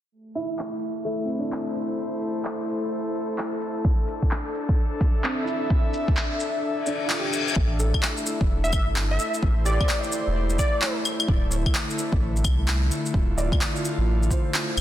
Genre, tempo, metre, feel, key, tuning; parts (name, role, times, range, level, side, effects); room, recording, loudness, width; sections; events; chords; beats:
future garage; 129 BPM; 4/4; swing 63% on 16ths; A minor; A4 = 439 Hz
airy breathy pad; sustained chords; 0.1-14.8 s; D3 to E5; -29 LUFS; left 1 dB; chorus, sidechain pumping
warm upright piano; accompaniment; 0.4-14.8 s; A3 to D5; -33 LUFS; right 1 dB; sidechain pumping, low-pass filter, tape echo
electronic shaker, handclaps and claves; drums; 0.4-14.8 s; -29 LUFS; left 1 dB; small room ambience
electronic kick drum; drums; 3.8-14.4 s; -23 LUFS; equal; small room ambience
reverse cymbal; sound effects; 6.8-7.6 s; -30 LUFS; left 6 dB
warm sub bass; bass; 7.6-14.8 s; D1 to C2; -24 LUFS; equal; sidechain pumping
plucky unison lead; melody; 8.6-11.0 s; D5 to E5; -29 LUFS; equal; tape echo
light reverb; dense, heavily limited modern master, low-pass filter; -22 LUFS; side -12 dB against mid
0.1-7.6 A section; 7.6-14.8 B section
filter sweep on upright piano 0.1-7.6; filter sweep 0.1-7.6; kick drops out 6.6-7.6; reverse cymbal 6.8-7.6
0.1 Am; 3.8 Dm7; 7.6 Am7; 11.3 Dm7
| 0.12 0.59 1.05 1.52 | 1.98 2.45 2.91 3.38 | 3.84 4.31 4.77 5.24 | 5.70 6.17 6.63 7.10 | 7.56 8.03 8.49 8.96 | 9.43 9.89 10.36 10.82 | 11.29 11.75 12.21 12.68 | 13.15 13.61 14.08 14.54